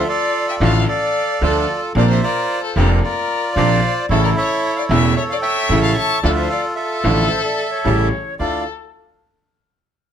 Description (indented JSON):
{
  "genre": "tango",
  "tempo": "112 BPM",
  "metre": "4/4",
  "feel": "rubato",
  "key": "D minor",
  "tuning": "A4 = 440 Hz",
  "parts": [
    { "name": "bandoneon", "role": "melody", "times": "0.0-8.6 s", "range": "E4 to C#6", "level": "-20 LUFS", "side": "right 2 dB", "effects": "none" },
    { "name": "warm violin", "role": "second line", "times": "0.0-8.7 s", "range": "G4 to A5", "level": "-23 LUFS", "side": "left 7 dB", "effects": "none" },
    { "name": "clear upright piano", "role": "accompaniment", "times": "0.0-8.6 s", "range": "E1 to F4", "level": "-20 LUFS", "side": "left 2 dB", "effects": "none" },
    { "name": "bandoneon", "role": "stabs", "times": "0.0-8.6 s", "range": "C4 to D5", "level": "-26 LUFS", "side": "right 8 dB", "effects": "none" },
    { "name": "upright bass", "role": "bass", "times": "0.0-8.6 s", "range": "E1 to D2", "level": "-19 LUFS", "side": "right 2 dB", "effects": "none" },
    { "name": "silver concert flute", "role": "second line", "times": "7.3-8.6 s", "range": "B4 to F5", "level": "-26 LUFS", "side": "left 1 dB", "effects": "none" }
  ],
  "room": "light reverb",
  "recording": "close, detailed microphones",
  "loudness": "-15 LUFS",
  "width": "side -9 dB against mid",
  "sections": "0.0-8.4 A section; 8.4-10.1 B section",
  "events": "none",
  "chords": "0.0 Dm; 2.0 Bbadd9; 4.1 A; 6.2 Dmadd9; 7.9 A7; 8.4 Dmadd9"
}